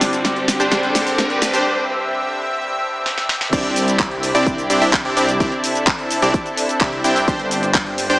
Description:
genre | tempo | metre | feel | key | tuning
EDM, festival progressive house | 128 BPM | 4/4 | straight | C major | A4 = 440 Hz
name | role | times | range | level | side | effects
picked steel-string acoustic guitar | accompaniment | 0.0-1.6 s | G2 to D4 | -26 LUFS | equal | sidechain pumping, tape echo
lush unison pad | sustained chords | 0.0-8.2 s | G2 to E5 | -22 LUFS | equal | chorus, sidechain pumping
supersaw stab | riff | 0.0-8.2 s | C4 to G5 | -19 LUFS | equal | sidechain pumping, low-pass filter, tape echo
pop drum kit | drums | 0.0-8.2 s | crash cymbal, handclaps, hi-hat, shaker, snare drum | -21 LUFS | equal | none
riser | sound effects | 0.0-1.7 s | none | -24 LUFS | left 1 dB | none
wide detuned saw bass | bass | 3.5-8.2 s | G1 to C2 | -25 LUFS | equal | chorus, sidechain pumping
electronic kick drum | drums | 3.5-7.8 s | none | -21 LUFS | equal | none
room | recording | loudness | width
moderate lush hall reverb, RT60 1.8 s | high-pass filter, small speaker sound | -16 LUFS | side -20 dB against mid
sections
0.0-3.5 A section; 3.5-8.2 B section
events
build-up 0.0-3.5; drum fill 0.0-1.7, 3.1-3.5; riser 0.0-1.7; break 1.7-3.5; drop 3.5-8.2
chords
0.0 Gsus4; 3.5 Cadd9; 7.3 Gsus4

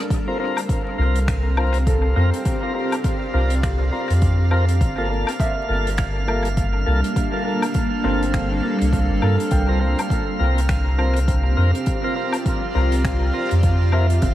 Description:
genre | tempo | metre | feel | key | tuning
ambient dub | 102 BPM | 4/4 | swing 60% on 16ths | unclear | A4 = 440 Hz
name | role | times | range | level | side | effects
granular cloud pad | sustained chords | 0.0-14.3 s | G3 to F5 | -26 LUFS | right 1 dB | built-in reverb
felt-muted upright piano | arpeggios | 0.0-14.3 s | C4 to G5 | -32 LUFS | right 1 dB | tape echo
electronic kick drum | drums | 0.1-14.3 s | none | -23 LUFS | equal | none
open jazz drum kit | drums | 0.1-14.3 s | finger snaps, hi-hat, woodblock | -32 LUFS | left 3 dB | dub echo
drifting glass-harmonics texture | texture | 0.7-14.3 s | F5 | -32 LUFS | right 4 dB | chorus, built-in reverb
tonewheel organ | stabs | 0.3-14.1 s | Bb3 to Bb4 | -26 LUFS | left 1 dB | slow rotary speaker, dub echo
soft dub sub bass | bass | 1.0-14.3 s | G1 to G2 | -19 LUFS | equal | none
room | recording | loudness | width
light reverb, studio reverb | vinyl crackle | -18 LUFS | side -13 dB against mid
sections
0.1-14.3 A section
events
none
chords
0.1 C7sus4; 4.8 Gm9; 9.5 C7sus4

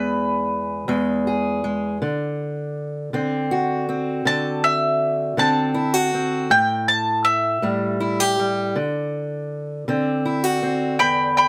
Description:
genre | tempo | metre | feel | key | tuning
acoustic country blues, solo or duo | 53 BPM (dotted quarters) | 12/8 | straight | unclear | A4 = 442 Hz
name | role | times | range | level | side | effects
bowl-back mandolin | melody | 0.0-11.5 s | B4 to B5 | -22 LUFS | equal | none
fingerpicked steel-string acoustic guitar | accompaniment | 0.0-11.5 s | E2 to G#4 | -24 LUFS | equal | none
room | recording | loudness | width
light reverb | close, detailed microphones | -22 LUFS | mono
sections
0.0-11.5 A section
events
none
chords
0.0 E; 2.0 D7; 6.5 A5; 8.7 D7

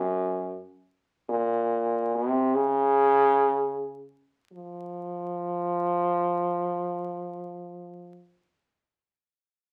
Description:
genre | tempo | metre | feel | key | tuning
hawaiian | free time | none | none | unclear | A4 = 440 Hz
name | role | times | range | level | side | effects
warm French horn | solo | 0.0-8.3 s | Gb2 to F3 | -27 LUFS | equal | none
room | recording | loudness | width
wet studio reverb, RT60 0.6 s | vinyl crackle | -26 LUFS | mono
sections
0.0-4.5 A section; 4.5-8.7 B section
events
slowing down 0.0-4.5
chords
none

